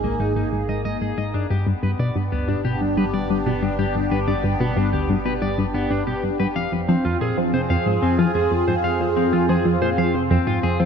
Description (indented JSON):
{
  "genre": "ambient, sequencer-driven space music",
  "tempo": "92 BPM",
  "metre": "4/4",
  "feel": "straight",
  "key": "unclear",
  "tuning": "A4 = 441 Hz",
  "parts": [
    { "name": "phased analog pad", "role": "sustained chords", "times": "0.0-10.9 s", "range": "Bb3 to Ab4", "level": "-24 LUFS", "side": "right 1 dB", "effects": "phaser, chorus" },
    { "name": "clean electric guitar", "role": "arpeggios", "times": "0.0-10.9 s", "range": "Bb3 to F5", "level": "-27 LUFS", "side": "moving between left 6 dB and equal", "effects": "auto-pan, ping-pong delay" },
    { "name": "tight sequenced synth", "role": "riff", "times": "0.0-10.9 s", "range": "C2 to F3", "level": "-22 LUFS", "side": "left 1 dB", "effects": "chorus, ping-pong delay" },
    { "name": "analog drone", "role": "bass", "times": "0.0-10.9 s", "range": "G1 to F2", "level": "-31 LUFS", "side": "right 1 dB", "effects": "chorus" }
  ],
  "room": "moderate plate reverb, RT60 2.6 s",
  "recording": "none",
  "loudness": "-19 LUFS",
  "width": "side -6 dB against mid",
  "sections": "0.0-10.9 A section",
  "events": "fade-in on clean electric guitar 0.0-10.9; filter sweep on synth arpeggio sound 0.0-10.9",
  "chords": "0.0 Absus2; 1.3 G; 6.6 Fm",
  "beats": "0.04 0.69 | 1.34 1.99 2.65 3.30 | 3.95 4.60 5.25 5.91 | 6.56 7.21 7.86 8.52 | 9.17 9.82 10.47"
}